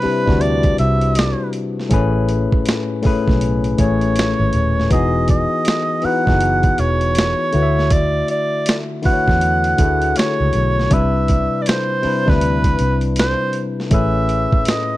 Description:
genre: R&B, neo-soul.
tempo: 80 BPM.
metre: 4/4.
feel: swing 61% on 16ths.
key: unclear.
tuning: A4 = 441 Hz.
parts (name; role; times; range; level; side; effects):
clear oboe; melody; 0.0-15.0 s; B4 to F#5; -20 LUFS; right 2 dB; none.
barky tine electric piano; accompaniment; 0.0-15.0 s; A2 to E5; -20 LUFS; left 4 dB; overdrive.
boom bap sampler-style drum kit; drums; 0.0-14.9 s; hi-hat, kick drum, snare drum; -19 LUFS; right 1 dB; none.
vintage muted fingered electric bass; bass; 0.1-14.5 s; D#1 to E2; -19 LUFS; right 1 dB; none.
room: digital ambience.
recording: dry, close 1970s-style studio recording.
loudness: -14 LUFS.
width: side -16 dB against mid.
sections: 0.0-15.0 A section.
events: none.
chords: 0.0 Cmaj9; 1.9 Amaj9; 4.9 Emaj9; 7.5 Dmaj9; 10.9 Cmaj9; 13.9 Amaj9.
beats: 0.41 1.16 | 1.91 2.66 3.41 4.16 | 4.91 5.66 6.41 7.16 | 7.91 8.66 9.41 10.16 | 10.91 11.66 12.41 13.16 | 13.91 14.66.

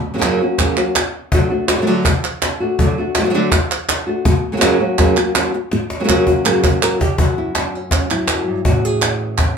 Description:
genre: flamenco.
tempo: 164 BPM.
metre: 4/4.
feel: straight.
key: unclear.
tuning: A4 = 439 Hz.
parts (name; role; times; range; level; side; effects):
flamenco guitar; melody; 0.1-9.6 s; F#2 to A#4; -17 LUFS; equal; none.
cajon; percussion; 0.2-9.6 s; none; -19 LUFS; left 1 dB; none.
palmas hand claps; percussion; 0.2-9.6 s; none; -19 LUFS; right 5 dB; none.
room: wet studio ambience, RT60 0.5 s.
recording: band playing live in one room.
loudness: -14 LUFS.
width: side -6 dB against mid.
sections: 0.0-7.2 A section; 7.2-9.6 B section.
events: drum fill 5.7-7.2.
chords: 0.0 F#; 1.3 D; 4.3 F#; 7.2 Esus2/F#; 8.6 Amaj7.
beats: 0.22 0.59 0.96 | 1.32 1.69 2.06 2.42 | 2.79 3.16 3.52 3.89 | 4.25 4.62 4.99 5.35 | 5.72 6.08 6.45 6.82 | 7.18 7.55 7.92 8.28 | 8.65 9.02 9.38.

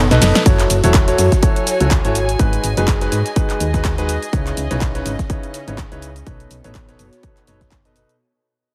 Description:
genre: piano house.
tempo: 124 BPM.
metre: 4/4.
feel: swing 56% on 16ths.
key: F# dorian.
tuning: A4 = 440 Hz.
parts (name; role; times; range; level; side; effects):
solid FM bass; bass; 0.0-8.0 s; E1 to G#2; -21 LUFS; equal; sidechain pumping.
clear concert grand piano; riff; 0.1-8.1 s; B2 to D#5; -23 LUFS; equal; vintage 12-bit sampler grit, sidechain pumping, tape echo.
dusty soul sampler-style drum kit; drums; 0.1-8.1 s; hi-hat, snare drum; -37 LUFS; equal; none.
punchy analog drum machine; drums; 0.1-8.2 s; handclaps, hi-hat, ride cymbal, shaker, snare drum; -24 LUFS; equal; none.
electronic kick drum; drums; 0.5-7.8 s; none; -19 LUFS; equal; overdrive.
dark studio string section; texture; 0.5-8.2 s; B3 to G#5; -28 LUFS; equal; sidechain pumping.
room: light reverb.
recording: heavily compressed radio sound.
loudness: -16 LUFS.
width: mono.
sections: 0.5-8.2 A section.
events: break 0.0-0.5; drum fill 0.1-0.5; fade-out 0.5-8.2.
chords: 0.5 F#m7; 2.2 G#m7; 4.3 C#m9; 6.3 B9.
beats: | 0.46 0.94 1.43 1.91 | 2.39 2.88 3.36 3.85 | 4.33 4.81 5.30 5.78 | 6.26 6.75 7.23 7.72.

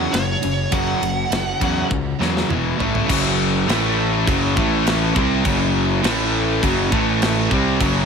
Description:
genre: hard rock.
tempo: 102 BPM.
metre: 4/4.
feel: straight.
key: unclear.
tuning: A4 = 443 Hz.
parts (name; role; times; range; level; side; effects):
high-gain lead guitar; melody; 0.0-1.9 s; C#5 to F#5; -25 LUFS; right 3 dB; distortion, tape echo.
cranked stack guitar; riff; 0.0-8.1 s; E2 to B#3; -22 LUFS; left 12 dB; overdrive.
overdriven semi-hollow guitar; riff; 0.0-8.1 s; E2 to B#3; -23 LUFS; right 12 dB; none.
fuzz picked electric bass; bass; 0.0-8.1 s; E1 to E2; -23 LUFS; equal; overdrive.
tight metal drum kit; drums; 0.1-7.9 s; crash cymbal, kick drum, ride cymbal, snare drum, toms; -23 LUFS; equal; none.
distorted electric guitar; riff; 3.1-8.1 s; F#2 to B#3; -25 LUFS; left 1 dB; overdrive.
room: studio reverb.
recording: none.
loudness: -16 LUFS.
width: side -6 dB against mid.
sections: 0.0-3.1 A section; 3.1-8.1 B section.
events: drum fill 1.9-3.1.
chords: 0.0 F#5; 2.5 E5; 2.8 A5; 3.1 F#5; 3.7 A5; 4.3 F#5; 4.6 A5; 5.2 F#5; 6.0 A5; 6.6 F#5; 6.9 A5; 7.5 F#5.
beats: 0.13 | 0.72 1.31 1.91 2.50 | 3.09 3.68 4.27 4.86 | 5.45 6.04 6.63 7.21 | 7.80.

